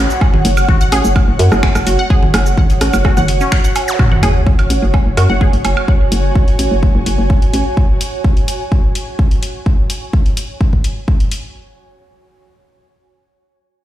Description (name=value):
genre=minimal techno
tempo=127 BPM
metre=4/4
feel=straight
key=unclear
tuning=A4 = 440 Hz
part: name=hollow knocking FM bass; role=bass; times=0.0-7.6 s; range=E1 to F#2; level=-14 LUFS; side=equal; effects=sidechain pumping
part: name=ethereal airy pad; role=texture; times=0.0-9.7 s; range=F#4 to G#5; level=-21 LUFS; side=right 2 dB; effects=ensemble chorus, built-in reverb, tremolo, sidechain pumping
part: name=house drum kit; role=drums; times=0.1-11.4 s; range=cabasa, finger snaps, hi-hat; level=-23 LUFS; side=left 1 dB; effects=none
part: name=electronic kick drum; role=drums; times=0.2-11.2 s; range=none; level=-12 LUFS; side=equal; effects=none
part: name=electronic woodblock, congas and rim click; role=percussion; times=0.2-5.9 s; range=none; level=-20 LUFS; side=right 4 dB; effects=tape echo
part: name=resonant blip pluck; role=riff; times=0.7-5.4 s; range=C#4 to F#5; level=-23 LUFS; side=left 1 dB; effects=phaser, cassette tape, sidechain pumping, ping-pong delay
part: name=zap and sub drop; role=sound effects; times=3.9-5.9 s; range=none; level=-20 LUFS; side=equal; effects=none
room=little or no reverb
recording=played on a big sound system in a bare room, stone room reverb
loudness=-11 LUFS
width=side -13 dB against mid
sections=0.0-4.0 A section; 4.0-11.6 B section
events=drop 0.0-4.0; impact 4.0-5.9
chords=0.0 F#5